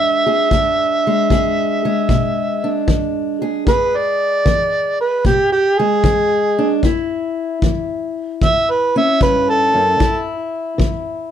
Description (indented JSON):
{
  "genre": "acoustic country blues, solo or duo",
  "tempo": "76 BPM",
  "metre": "4/4",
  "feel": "swing 68% on 8ths",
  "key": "E mixolydian",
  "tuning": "A4 = 439 Hz",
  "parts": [
    { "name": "overdriven harmonica", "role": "melody", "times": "0.0-10.3 s", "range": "G4 to E5", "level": "-15 LUFS", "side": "right 2 dB", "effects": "none" },
    { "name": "fingerpicked steel-string acoustic guitar", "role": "accompaniment", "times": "0.0-11.3 s", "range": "E2 to G#4", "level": "-20 LUFS", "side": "left 2 dB", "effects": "none" },
    { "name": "kick drum", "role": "drums", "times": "0.5-11.0 s", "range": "none", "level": "-18 LUFS", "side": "left 1 dB", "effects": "none" }
  ],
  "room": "light reverb",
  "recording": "none",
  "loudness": "-14 LUFS",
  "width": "side -9 dB against mid",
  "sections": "0.0-3.7 A section; 3.7-11.3 B section",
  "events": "harmonica solo 3.7-11.3",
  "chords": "0.0 E7; 6.8 A7; 10.0 N.C."
}